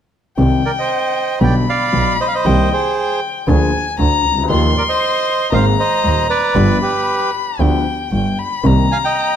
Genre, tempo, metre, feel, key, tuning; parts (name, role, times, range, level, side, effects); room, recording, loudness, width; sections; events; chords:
tango; 116 BPM; 4/4; rubato; C minor; A4 = 440 Hz
dark violin; second line; 0.4-9.4 s; G5 to C6; -19 LUFS; left 6 dB
warm concert grand piano; accompaniment; 0.4-8.9 s; Eb1 to Ab4; -18 LUFS; left 2 dB
rich double bass; bass; 0.4-8.9 s; G1 to Eb2; -17 LUFS; right 2 dB
bandoneon; melody; 0.7-9.4 s; G4 to Ab5; -18 LUFS; right 4 dB
moderate recital hall reverb, RT60 1.7 s; close, detailed microphones; -13 LUFS; side -9 dB against mid
0.4-9.4 A section
0.4 Cm; 1.4 G/B; 2.5 Cm7; 3.5 Bb7/D; 4.5 Ebadd9; 5.5 Abadd9; 6.6 G7; 8.6 Cm7